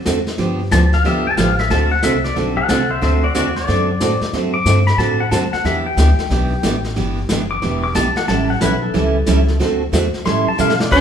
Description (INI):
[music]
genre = country, western swing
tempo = 182 BPM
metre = 4/4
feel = swing 64% on 8ths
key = D mixolydian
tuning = A4 = 438 Hz
[part]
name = picked steel-string acoustic guitar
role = accompaniment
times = 0.1-11.0 s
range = D3 to A4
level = -19 LUFS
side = right 4 dB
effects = none
[part]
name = upright bass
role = bass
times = 0.1-11.0 s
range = E1 to B2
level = -19 LUFS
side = left 1 dB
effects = none
[part]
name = vintage brush drum kit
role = drums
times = 0.1-11.0 s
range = brushed snare drum, crash cymbal, hi-hat, kick drum, snare drum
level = -24 LUFS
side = left 1 dB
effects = none
[part]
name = pedal steel guitar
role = second line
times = 0.7-10.9 s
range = F#4 to D6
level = -20 LUFS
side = left 4 dB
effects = none
[part]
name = clean lap steel guitar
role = melody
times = 10.9-11.0 s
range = C5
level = -12 LUFS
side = left 3 dB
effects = none
[part]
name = clear fiddle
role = second line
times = 10.9-11.0 s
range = D4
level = -14 LUFS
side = right 2 dB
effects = none
[sound]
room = wet large studio reverb, RT60 1.2 s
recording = band playing live in one room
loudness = -14 LUFS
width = side -8 dB against mid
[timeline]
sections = 0.0-10.9 A section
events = pedal steel guitar solo 0.0-10.9; drum fill 10.6-10.9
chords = 0.4 G9; 1.7 D7; 5.7 Em7; 8.3 A9; 9.6 D9; 10.3 A9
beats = 0.06 | 0.39 0.72 1.04 1.37 | 1.70 2.03 2.36 2.69 | 3.02 3.35 3.68 4.00 | 4.33 4.66 4.99 5.32 | 5.65 5.98 6.31 6.64 | 6.97 7.30 7.62 7.95 | 8.28 8.61 8.94 9.27 | 9.60 9.93 10.26 10.59 | 10.92